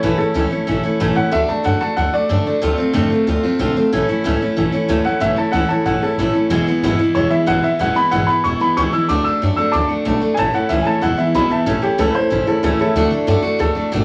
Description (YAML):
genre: rockabilly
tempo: 186 BPM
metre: 4/4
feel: straight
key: A major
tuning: A4 = 442 Hz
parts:
  - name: dark upright piano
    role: melody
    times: 0.0-13.9 s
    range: E4 to E6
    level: -21 LUFS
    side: equal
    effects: none
  - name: picked steel-string acoustic guitar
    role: accompaniment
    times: 0.0-14.0 s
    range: E2 to F#4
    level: -20 LUFS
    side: equal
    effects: none
  - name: upright bass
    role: bass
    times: 0.0-14.0 s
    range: E1 to F#2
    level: -25 LUFS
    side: equal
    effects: none
room: moderate large studio reverb, RT60 0.8 s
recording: vinyl crackle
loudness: -17 LUFS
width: mono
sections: 0.0-11.7 A section; 11.7-14.0 B section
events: upright piano solo 11.7-14.0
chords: 0.0 A; 1.3 D; 2.6 Dm7; 3.9 A; 6.5 E; 9.1 D; 10.4 A; 11.0 E; 11.7 A; 13.0 D